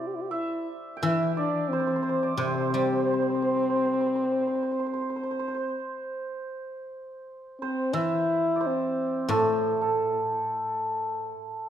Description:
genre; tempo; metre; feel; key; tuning
chinese traditional, Chinese chamber ensemble; 88 BPM; 4/4; rubato; C gong mode; A4 = 440 Hz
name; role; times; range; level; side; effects
warm French horn; melody; 0.0-10.0 s; A3 to G4; -27 LUFS; equal; none
hammered dulcimer; second line; 0.0-11.7 s; A4 to G5; -30 LUFS; right 2 dB; none
guzheng; accompaniment; 0.0-11.3 s; A2 to G3; -30 LUFS; left 3 dB; none
room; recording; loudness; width
moderate recital hall reverb, RT60 1.4 s; recorded in a church or concert hall; -25 LUFS; side -10 dB against mid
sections
0.0-6.6 A section; 6.6-11.7 B section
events
none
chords
none

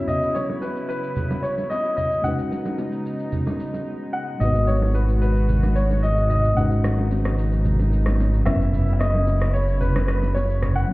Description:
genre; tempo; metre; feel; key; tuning
amapiano; 111 BPM; 4/4; straight; unclear; A4 = 441 Hz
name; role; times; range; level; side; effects
clear concert grand piano; melody; 0.0-10.9 s; B4 to F#5; -26 LUFS; left 1 dB; tape echo
mellow tine electric piano; accompaniment; 0.0-10.9 s; F#3 to C#5; -29 LUFS; left 2 dB; slow stereo tremolo
dark studio string section; sustained chords; 0.0-10.9 s; B2 to F#4; -32 LUFS; equal; none
electronic shaker and rim click; drums; 0.1-10.9 s; none; -33 LUFS; equal; none
congas and bongos; percussion; 0.1-10.8 s; none; -30 LUFS; right 2 dB; none
fat analog bass; bass; 4.4-10.9 s; F#1 to G#1; -20 LUFS; equal; none
room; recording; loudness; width
light reverb; heard muffled through a wall, stone room reverb, EQ; -19 LUFS; side -20 dB against mid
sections
0.0-10.9 A section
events
break 3.9-4.4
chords
0.0 F#7sus4; 2.2 B69; 4.4 G#m7; 6.6 C#9sus4/G#; 8.5 F#7sus4

